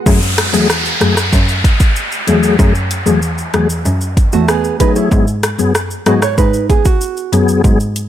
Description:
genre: dancehall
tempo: 95 BPM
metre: 4/4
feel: straight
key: F# dorian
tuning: A4 = 440 Hz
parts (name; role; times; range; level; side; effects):
- mellow tonewheel organ; accompaniment; 0.1-7.8 s; F#3 to G#4; -15 LUFS; left 5 dB; chorus vibrato, fast rotary speaker, sidechain pumping
- dark cello; bass; 0.1-8.0 s; E2 to G#2; -16 LUFS; equal; none
- afro-pop drum kit; drums; 0.1-8.1 s; hi-hat, kick drum, rim click, shaker; -14 LUFS; equal; none
- downlifter; sound effects; 0.1-5.1 s; none; -19 LUFS; equal; none
- nylon-string guitar; arpeggios; 4.3-7.8 s; A3 to D#5; -16 LUFS; right 9 dB; none
room: light reverb, digital ambience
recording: none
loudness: -11 LUFS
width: side -11 dB against mid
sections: 0.1-8.1 A section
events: none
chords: 0.1 F#madd9; 5.1 G#m7

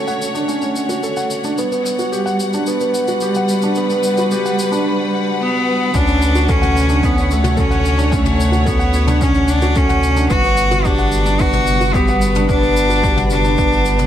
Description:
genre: piano and strings electronica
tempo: 110 BPM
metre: 4/4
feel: straight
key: D major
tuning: A4 = 442 Hz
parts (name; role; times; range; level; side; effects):
- warm studio string section; sustained chords; 0.0-14.1 s; D3 to F#5; -22 LUFS; left 1 dB; sidechain pumping
- felt-muted upright piano; riff; 0.0-14.1 s; B3 to F#5; -19 LUFS; right 2 dB; digital delay
- shaker and toms; drums; 0.1-14.1 s; none; -27 LUFS; left 5 dB; high-pass filter on toms, high-pass filter on snare, high-pass filter on perc, high-pass filter on room
- bright cello; melody; 5.4-14.1 s; A3 to F#4; -18 LUFS; equal; none
- round analog bass; bass; 5.9-14.1 s; G1 to D2; -18 LUFS; equal; tube saturation, sidechain pumping
- electronic kick drum; drums; 5.9-13.7 s; none; -19 LUFS; equal; overdrive
room: moderate echo chamber reverb, RT60 2.4 s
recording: none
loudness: -13 LUFS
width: side -10 dB against mid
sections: 0.0-5.9 A section; 5.9-14.1 B section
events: build-up 0.0-5.9; drop 5.9-14.1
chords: 0.0 Dmaj7; 1.6 Gmaj7; 5.9 Dmaj7; 10.3 Gmaj7

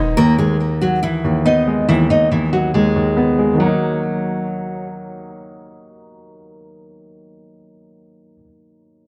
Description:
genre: hip hop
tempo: 140 BPM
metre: 4/4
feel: half-time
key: Eb phrygian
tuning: A4 = 440 Hz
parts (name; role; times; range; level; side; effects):
- nylon-string guitar; melody; 0.0-4.8 s; Fb3 to Eb5; -20 LUFS; equal; delay
- felt-muted upright piano; accompaniment; 0.0-9.1 s; Eb2 to Eb5; -20 LUFS; equal; none
room: light reverb, small room ambience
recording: low-pass filter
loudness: -17 LUFS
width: mono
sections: 0.2-3.6 A section; 3.6-7.0 B section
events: none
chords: 0.0 Abm/Eb; 3.6 Ebm

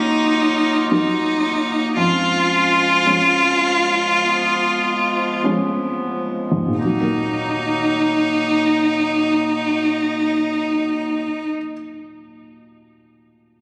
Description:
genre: pop ballad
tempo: 44-59 BPM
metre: 4/4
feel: straight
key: Eb minor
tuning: A4 = 440 Hz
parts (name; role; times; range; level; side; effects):
- rich cello; melody; 0.0-11.5 s; Eb4 to F4; -20 LUFS; equal; none
- dark upright piano; accompaniment; 0.0-13.6 s; Eb2 to Eb4; -28 LUFS; equal; none
- clear woodwind section; sustained chords; 0.0-11.5 s; F3 to F4; -26 LUFS; equal; none
room: moderate concert hall reverb, RT60 2.2 s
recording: recorded on a phone in the room, studio reverb, compression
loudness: -18 LUFS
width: mono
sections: 0.0-6.8 A section; 6.8-12.2 B section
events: slowing down 0.0-6.8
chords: 0.0 Ebm; 2.0 Db/F; 6.8 Ebm

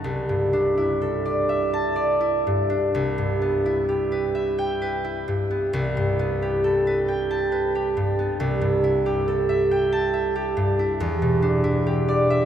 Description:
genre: classical, solo harp piece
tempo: 40-47 BPM (dotted quarters)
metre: 6/8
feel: rubato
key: C major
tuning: A4 = 443 Hz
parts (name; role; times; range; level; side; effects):
- concert harp; solo; 0.0-12.5 s; C2 to A5; -20 LUFS; equal; none
room: wet cathedral reverb, RT60 4.3 s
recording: none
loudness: -20 LUFS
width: side -9 dB against mid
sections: 0.0-2.9 A section; 2.9-12.5 A section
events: none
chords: 0.0 C69; 2.9 Cmaj7; 5.7 Am9/C; 8.4 C6; 11.0 Em7

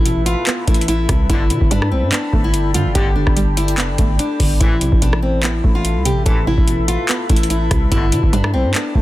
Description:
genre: hip hop, trap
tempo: 145 BPM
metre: 4/4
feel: half-time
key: A minor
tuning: A4 = 442 Hz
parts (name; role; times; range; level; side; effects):
- nylon-string guitar; melody; 0.0-9.0 s; C4 to A4; -21 LUFS; left 2 dB; digital delay
- string-like resonator pluck; accompaniment; 0.0-9.0 s; G2 to B3; -25 LUFS; right 3 dB; chorus
- deep dark ambient pad; sustained chords; 0.0-9.0 s; A4 to B5; -27 LUFS; left 2 dB; chorus, built-in reverb
- growling 808-style bass; bass; 0.0-9.0 s; F1 to B2; -19 LUFS; equal; none
- booming analog drum machine; drums; 0.1-9.0 s; handclaps, hi-hat, kick drum, rim click; -16 LUFS; equal; none
- warm brass ensemble; stabs; 1.3-8.0 s; E2 to E3; -32 LUFS; left 3 dB; none
room: digital ambience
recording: dense, heavily limited modern master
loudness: -14 LUFS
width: side -16 dB against mid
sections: 0.0-9.0 A section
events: none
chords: 0.0 Amadd9; 1.3 Gadd9; 4.6 Amadd9; 7.9 Gadd9

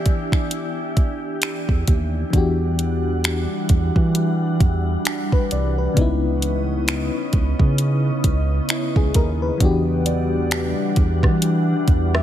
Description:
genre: contemporary R&B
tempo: 66 BPM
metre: 4/4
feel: swing 58% on 16ths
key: unclear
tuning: A4 = 441 Hz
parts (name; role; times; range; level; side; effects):
- FM electric piano with tremolo; accompaniment; 0.0-12.2 s; C#3 to G#5; -25 LUFS; left 4 dB; none
- glassy FM pad; sustained chords; 0.0-12.2 s; C#3 to F#5; -26 LUFS; right 1 dB; ensemble chorus, built-in reverb
- smooth R&B drum kit; drums; 0.1-12.2 s; finger snaps, hi-hat, kick drum, rim click; -19 LUFS; right 1 dB; none
- smooth synth bass; bass; 1.7-12.2 s; C2 to E3; -21 LUFS; right 1 dB; none
- soft synth bell; texture; 10.1-11.2 s; D5; -35 LUFS; right 4 dB; chorus, phaser, ping-pong delay
room: little or no reverb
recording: none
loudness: -17 LUFS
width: side -11 dB against mid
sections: 0.0-2.3 A section; 2.3-12.2 B section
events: none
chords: 0.0 Em7; 2.3 Em9; 6.0 C#m9; 9.6 Em9

